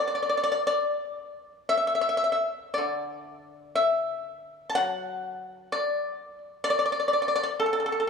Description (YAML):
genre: chinese traditional, Chinese solo plucked strings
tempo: 57-65 BPM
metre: 2/4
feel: rubato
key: D gong mode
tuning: A4 = 440 Hz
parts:
  - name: pipa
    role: solo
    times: 0.0-8.1 s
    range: D3 to A5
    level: -25 LUFS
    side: left 2 dB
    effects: none
room: moderate concert hall reverb, RT60 2.3 s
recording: studio ambience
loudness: -24 LUFS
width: side -5 dB against mid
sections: 0.0-8.1 A section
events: none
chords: none